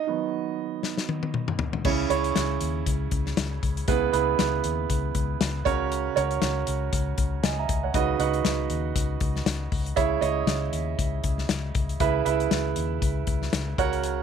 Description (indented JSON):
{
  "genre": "piano-driven pop",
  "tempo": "118 BPM",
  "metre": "4/4",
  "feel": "swing 56% on 16ths",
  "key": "C# dorian",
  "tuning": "A4 = 439 Hz",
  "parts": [
    { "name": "warm concert grand piano", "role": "accompaniment", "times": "0.0-14.2 s", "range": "C#3 to A#5", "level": "-27 LUFS", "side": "right 11 dB", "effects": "none" },
    { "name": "natural country drum kit", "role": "drums", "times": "0.8-14.2 s", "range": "crash cymbal, hi-hat, kick drum, snare drum, toms", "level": "-28 LUFS", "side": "left 5 dB", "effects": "none" },
    { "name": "vintage muted fingered electric bass", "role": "bass", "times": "1.8-14.2 s", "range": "C#2 to D#2", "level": "-29 LUFS", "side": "left 2 dB", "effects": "none" }
  ],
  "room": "light reverb, studio reverb",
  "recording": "1960s-style stereo",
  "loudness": "-23 LUFS",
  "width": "side -7 dB against mid",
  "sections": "0.0-1.8 A section; 1.8-14.2 B section",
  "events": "break 0.0-1.8; grand piano solo 0.0-1.8; drum fill 0.8-1.8",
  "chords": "0.0 B; 1.8 C#m; 3.9 E/C#; 5.7 F#/C#; 7.9 B/C#; 10.0 C#m; 12.0 E/C#"
}